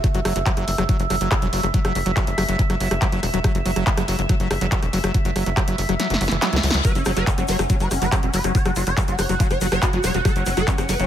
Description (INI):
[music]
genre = psychedelic trance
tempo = 141 BPM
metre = 4/4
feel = straight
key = unclear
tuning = A4 = 440 Hz
[part]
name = overtone-sweeping drone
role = sustained chords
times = 0.0-11.1 s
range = E5 to F#5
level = -28 LUFS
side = right 2 dB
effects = chorus, built-in reverb, sidechain pumping
[part]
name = liquid acid bass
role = riff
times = 0.0-11.1 s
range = E3 to F#3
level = -25 LUFS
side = moving between left 5 dB and right 4 dB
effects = chorus, auto-pan, sidechain pumping, ping-pong delay
[part]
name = big-room dance drum kit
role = drums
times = 0.0-11.1 s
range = handclaps, hi-hat, rim click, snare drum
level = -26 LUFS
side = equal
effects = small room ambience
[part]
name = electronic kick drum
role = drums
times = 0.0-10.8 s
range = none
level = -20 LUFS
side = equal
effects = overdrive, small room ambience
[part]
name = tight sequencer bass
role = bass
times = 0.1-11.1 s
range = E1 to C#2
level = -24 LUFS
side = equal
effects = none
[part]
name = reverse cymbal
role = sound effects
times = 6.2-6.8 s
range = none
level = -31 LUFS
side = left 5 dB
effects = none
[part]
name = swarming rave lead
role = melody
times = 6.8-11.1 s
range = C#4 to C#5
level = -26 LUFS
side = equal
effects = chorus, phaser, cassette tape, sidechain pumping, ping-pong delay
[part]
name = egg shaker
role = percussion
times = 6.9-11.1 s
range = none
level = -35 LUFS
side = left 6 dB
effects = none
[sound]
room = light reverb, digital ambience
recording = none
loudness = -18 LUFS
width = side -10 dB against mid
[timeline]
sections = 0.0-11.1 A section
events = kick drops out 6.0-6.8; drum fill 6.0-6.8; reverse cymbal 6.2-6.8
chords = 0.0 F#5